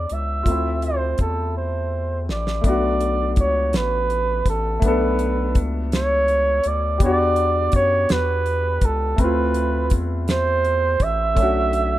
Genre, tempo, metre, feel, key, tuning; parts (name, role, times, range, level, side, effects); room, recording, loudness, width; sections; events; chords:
slow six-eight R&B; 55 BPM (dotted quarters); 6/8; straight; B minor; A4 = 443 Hz
breathy flugelhorn; melody; 0.0-12.0 s; A4 to E5; -22 LUFS; right 2 dB
warm grand piano; accompaniment; 0.0-12.0 s; F#3 to A4; -25 LUFS; left 2 dB
round analog bass; bass; 0.0-12.0 s; A1 to F#2; -24 LUFS; equal
damped 70s drum kit; drums; 0.1-11.9 s; hi-hat, kick drum, snare drum; -20 LUFS; equal
little or no reverb; rough home demo mix; -18 LUFS; side -14 dB against mid
0.0-2.6 A section; 2.6-12.0 B section
drum fill 1.5-2.6
0.5 Dm9; 2.6 Bm9; 7.0 Em9; 9.2 Dm9; 11.4 Bm9